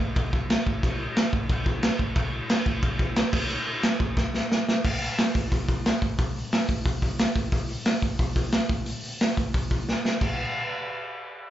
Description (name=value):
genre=punk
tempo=179 BPM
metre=4/4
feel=straight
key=none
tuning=none
part: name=raw garage drum kit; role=drums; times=0.2-10.3 s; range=crash cymbal, hi-hat, kick drum, snare drum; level=-23 LUFS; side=equal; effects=none
room=little or no reverb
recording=live gig heard through the venue's PA, club reverb, nothing above 7.7 kHz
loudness=-23 LUFS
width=side -12 dB against mid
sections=0.0-4.8 A section; 4.8-10.2 B section; 10.2-11.5 C section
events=drum fill 4.2-4.8, 9.9-10.2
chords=none